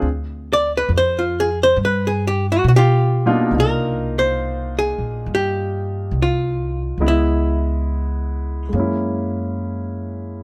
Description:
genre	jazz ballad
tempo	69 BPM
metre	4/4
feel	swing 69% on 8ths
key	unclear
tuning	A4 = 440 Hz
part	warm grand piano	accompaniment	0.0-10.4 s	B2 to Eb5	-25 LUFS	equal	none
part	upright bass	bass	0.0-10.4 s	Bb1 to B2	-23 LUFS	equal	none
part	archtop guitar, miked and amplified	melody	0.5-8.7 s	Fb4 to D5	-22 LUFS	equal	none
room	little or no reverb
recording	close, detailed microphones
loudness	-19 LUFS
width	mono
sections	0.0-3.5 A section; 3.5-10.4 B section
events	hollow-body jazz guitar solo 0.0-3.5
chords	0.0 Dm7; 1.8 G7; 3.5 Cm11; 7.0 Dbm7; 8.7 F#9

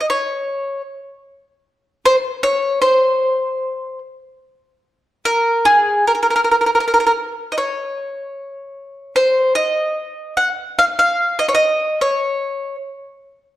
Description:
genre	fado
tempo	76 BPM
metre	2/4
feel	rubato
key	Db major from 4.4 s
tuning	A4 = 437 Hz
part	bowl-back mandolin	solo	0.0-12.8 s	Ab4 to Gb5	-15 LUFS	equal	none
room	moderate recital hall reverb, RT60 1.5 s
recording	dark, warm production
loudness	-15 LUFS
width	side -14 dB against mid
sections	0.0-4.4 A section; 4.4-13.6 B section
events	none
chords	none

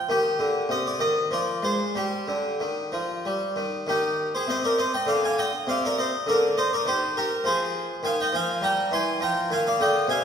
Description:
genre	classical, baroque-style suite movement for harpsichord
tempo	90-103 BPM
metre	3/4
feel	rubato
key	C minor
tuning	A4 = 436 Hz
part	harpsichord	solo	0.0-10.2 s	C3 to C6	-22 LUFS	equal	none
room	wet recital hall reverb, RT60 1.7 s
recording	heard from further back in the room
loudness	-22 LUFS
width	side -7 dB against mid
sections	0.0-3.9 A section; 3.9-10.2 A section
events	none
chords	0.1 Cm; 1.3 Dm7b5/F; 1.9 Dmadd11; 3.2 Eb; 3.9 Cm/Eb; 5.1 G5/D; 5.7 Cm; 7.4 Fm; 8.6 C7/G; 9.2 F5

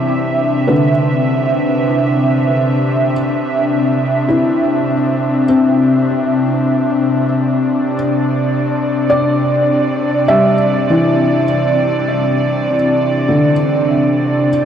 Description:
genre	ambient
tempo	50 BPM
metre	4/4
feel	straight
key	C major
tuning	A4 = 441 Hz
part	airy breathy pad	sustained chords	0.0-14.7 s	C3 to E5	-14 LUFS	equal	chorus
part	felt-muted upright piano	arpeggios	0.0-14.7 s	D3 to D6	-17 LUFS	left 1 dB	tape echo
room	wet huge ambient reverb, RT60 9.0 s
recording	dark, warm production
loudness	-12 LUFS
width	side -8 dB against mid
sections	0.0-14.7 A section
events	none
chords	0.0 Cmaj9

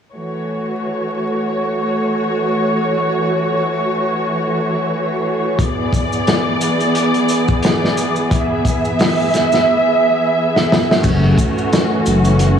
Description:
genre	trip hop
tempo	88 BPM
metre	4/4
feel	swing 55% on 16ths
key	F# minor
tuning	A4 = 442 Hz
part	muted studio string section	sustained chords	0.1-12.6 s	E3 to E5	-16 LUFS	right 1 dB	none
part	crunchy breakbeat drum kit	drums	5.6-12.6 s	crash cymbal, hi-hat, kick drum, snare drum	-18 LUFS	left 1 dB	none
part	maracas	percussion	5.6-12.6 s	none	-33 LUFS	equal	none
part	dark detuned saw bass	bass	11.0-12.6 s	F#1	-13 LUFS	left 1 dB	none
room	wet church reverb, RT60 2.8 s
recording	dreamy mix soaked in reverb, vinyl crackle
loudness	-14 LUFS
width	side -8 dB against mid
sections	0.1-11.0 A section; 11.0-12.6 B section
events	drum fill 10.5-11.0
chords	0.1 F#m7; 5.6 E7; 11.0 F#m7

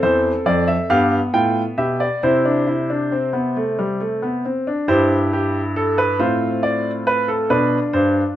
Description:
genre	classical, baroque-style 4-part fugue for grand piano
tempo	46 BPM (dotted quarters)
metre	6/8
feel	straight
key	C major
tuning	A4 = 440 Hz
part	clear baby grand piano	solo	0.0-8.4 s	E2 to G5	-16 LUFS	equal	none
room	light reverb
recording	none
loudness	-16 LUFS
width	side -12 dB against mid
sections	0.0-4.9 A section; 4.9-8.4 B section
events	none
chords	0.0 Dm; 0.9 G7; 2.2 C; 4.9 C/G; 6.2 Dm7/A; 7.5 G

